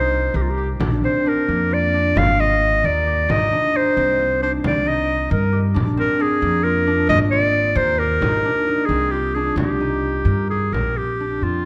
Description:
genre	contemporary instrumental, chamber music in an uneven meter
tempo	266 BPM (eighths)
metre	11/8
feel	straight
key	unclear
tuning	A4 = 440 Hz
part	clear clarinet	melody	0.0-11.7 s	F4 to F5	-22 LUFS	equal	none
part	concert harp	arpeggios	0.0-11.7 s	Bb3 to Bb4	-26 LUFS	equal	none
part	upright bass	bass	0.0-11.6 s	Ab1 to G2	-24 LUFS	equal	none
part	frame drum	percussion	0.1-11.0 s	none	-30 LUFS	equal	none
room	moderate concert hall reverb, RT60 2.0 s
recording	none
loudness	-19 LUFS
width	mono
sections	0.0-10.7 A section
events	none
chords	0.0 Cm7; 0.8 Bb; 2.2 Absus2; 4.6 Cm7; 5.8 Bb7; 7.1 Absus2; 9.6 Cm7; 10.7 Bbadd9

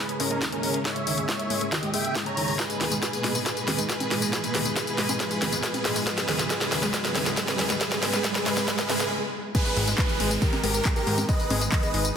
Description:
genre	uplifting trance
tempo	138 BPM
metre	4/4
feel	straight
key	G# minor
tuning	A4 = 439 Hz
part	big supersaw lead	melody	0.0-12.1 s	C#4 to A#5	-29 LUFS	right 1 dB	sidechain pumping, low-pass filter, tape echo
part	lush unison pad	sustained chords	0.0-12.2 s	A#2 to G#4	-34 LUFS	equal	chorus, sidechain pumping
part	riser and downlifter	sound effects	0.6-12.2 s	none	-35 LUFS	right 2 dB	none
part	house drum kit	drums	0.1-12.1 s	congas, crash cymbal, handclaps, hi-hat, snare drum, tambourine	-27 LUFS	left 1 dB	overdrive, high-pass filter on snare, studio reverb, high-pass filter on hats, high-pass filter on perc, high-pass filter on cymbals
part	wide unison pluck	arpeggios	0.2-12.0 s	D#3 to G#3	-32 LUFS	left 1 dB	vintage 12-bit sampler grit, sidechain pumping, tape echo
part	electronic kick drum	drums	0.4-11.8 s	none	-27 LUFS	equal	overdrive, high-pass filter on kick, studio reverb
part	dark concert grand piano	second line	9.6-12.1 s	A#4 to D#5	-34 LUFS	equal	sidechain pumping, tape echo
part	plucky analog bass	bass	9.8-12.1 s	G#1 to G#2	-27 LUFS	equal	sidechain pumping
room	moderate digital room reverb, RT60 1.1 s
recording	dense, heavily limited modern master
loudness	-23 LUFS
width	side -7 dB against mid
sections	0.0-9.5 A section; 9.5-12.2 B section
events	build-up 0.0-9.5; drum fill 0.0-9.1; filter sweep on supersaw synth 0.0-9.5; filter sweep on synth pluck 0.0-9.5; riser 0.6-9.1; stop 9.1-9.5; drop 9.5-12.2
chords	0.0 A#m7b5; 2.6 G#madd9; 6.1 C#m7; 9.5 G#madd9

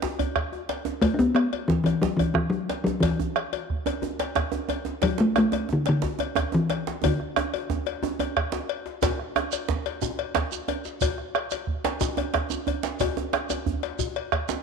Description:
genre	west african traditional, West African drum ensemble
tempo	120 BPM (dotted quarters)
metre	12/8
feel	straight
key	D major pentatonic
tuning	A4 = 439 Hz
part	djembe	percussion	0.0-14.6 s	none	-34 LUFS	left 7 dB	none
part	djembe	percussion	0.0-14.6 s	none	-30 LUFS	right 7 dB	none
part	bombo	percussion	0.2-14.5 s	none	-29 LUFS	right 5 dB	none
part	cowbell	percussion	0.2-14.5 s	none	-32 LUFS	left 13 dB	none
part	talking drum	melody	1.0-8.7 s	D3 to D4	-23 LUFS	left 2 dB	none
part	shekere	percussion	9.0-14.6 s	none	-35 LUFS	right 8 dB	none
room	moderate echo chamber reverb, RT60 1.6 s, small room ambience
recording	1960s-style stereo with parts hard left and right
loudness	-24 LUFS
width	side -5 dB against mid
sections	0.0-9.0 A section; 9.0-14.6 B section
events	drum fill 7.0-9.0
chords	none

